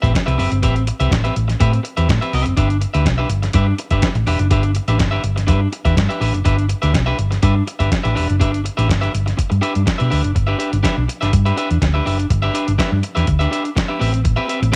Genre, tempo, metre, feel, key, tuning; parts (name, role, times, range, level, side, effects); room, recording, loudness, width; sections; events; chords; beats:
disco; 123 BPM; 4/4; straight; A4 = 441 Hz
electric guitar at the edge of break-up; accompaniment; 0.0-14.8 s; C4 to E5; -24 LUFS; equal
hollow-body short-scale fingered electric bass; bass; 0.0-14.7 s; E1 to B2; -20 LUFS; equal
dusty soul sampler-style drum kit; drums; 0.0-14.8 s; hi-hat, kick drum, snare drum; -22 LUFS; equal
little or no reverb; -18 LUFS; mono
0.0-10.4 A section; 10.4-14.8 B section
0.0 Am9; 2.6 G6; 14.0 Am9
0.14 | 0.63 1.11 1.60 2.08 | 2.57 3.06 3.54 4.03 | 4.51 5.00 5.49 5.97 | 6.46 6.95 7.43 7.92 | 8.41 8.89 9.38 9.87 | 10.35 10.84 11.33 11.82 | 12.30 12.79 13.28 13.77 | 14.25 14.74